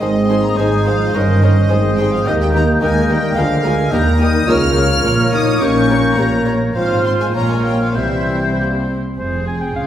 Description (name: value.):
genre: quick classical-period movement for symphony orchestra.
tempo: 96-110 BPM.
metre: 2/4.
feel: rubato.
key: Ab major, F minor from 4.5 s.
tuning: A4 = 440 Hz.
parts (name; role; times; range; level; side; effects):
clear studio violin section; melody; 0.0-9.9 s; F4 to F6; -24 LUFS; left 2 dB; none.
clear oboe; second line; 0.0-9.9 s; C5 to Ab5; -24 LUFS; right 1 dB; none.
mellow clarinet; second line; 0.0-9.2 s; Bb3 to Bb4; -24 LUFS; equal; none.
mellow hollow flute section; second line; 0.0-8.9 s; Eb6 to G6; -24 LUFS; left 1 dB; none.
warm symphonic violin section; second line; 0.0-9.9 s; E4 to Db5; -26 LUFS; left 2 dB; none.
dark studio viola section; accompaniment; 0.0-9.9 s; Eb3 to G4; -25 LUFS; right 1 dB; none.
warm bassoon; accompaniment; 0.0-8.9 s; G3 to Eb4; -23 LUFS; right 1 dB; none.
mellow French horn section; sustained chords; 0.0-8.6 s; Eb3 to F4; -22 LUFS; left 2 dB; none.
dark studio cello section; bass; 0.0-9.9 s; F2 to Eb3; -19 LUFS; right 1 dB; none.
warm studio double bass section; bass; 0.0-9.9 s; F1 to Eb2; -20 LUFS; right 1 dB; none.
room: wet scoring stage reverb, RT60 1.8 s.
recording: heard from further back in the room.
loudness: -13 LUFS.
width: side -11 dB against mid.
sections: 0.0-9.2 A section.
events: none.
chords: 0.0 Ab; 1.2 Eb7/G; 1.7 Ab; 2.3 Eb; 3.4 Bb7/D; 3.9 Eb; 4.5 Bbm/Db; 5.0 Bbm; 5.6 Gdim/Bb; 6.8 Fm/Ab; 7.4 Bbm; 8.0 C; 9.2 Fm.